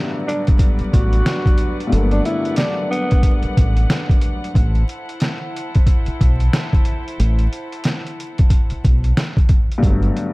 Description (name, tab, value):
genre	hip hop, boom-bap hip-hop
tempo	91 BPM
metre	4/4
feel	swing 61% on 16ths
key	G major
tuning	A4 = 440 Hz
part	dark upright piano	accompaniment	0.0-4.6, 9.8-10.3 s	G2 to B3	-23 LUFS	left 2 dB	cassette tape, high-pass filter, low-pass filter
part	warm studio string section	sustained chords	0.0-9.8 s	F#3 to F#5	-30 LUFS	equal	high-pass filter, low-pass filter
part	growling tenor saxophone	melody	0.3-3.4 s	B3 to F#4	-24 LUFS	equal	high-pass filter, low-pass filter, ping-pong delay
part	trip hop sampler-style drum kit	drums	0.3-10.3 s	hi-hat, kick drum, snare drum	-16 LUFS	equal	overdrive
part	deep dub fingered electric bass	bass	0.8-10.1 s	G1 to B1	-16 LUFS	equal	none
room	small room ambience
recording	dark, warm production, vinyl crackle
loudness	-15 LUFS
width	side -23 dB against mid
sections	0.0-9.8 A section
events	none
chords	0.0 Gmaj7; 4.6 Am; 9.8 Gmaj7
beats	0.60 1.26 | 1.92 2.58 3.24 3.90 | 4.55 5.21 5.87 6.53 | 7.19 7.85 8.51 9.17 | 9.83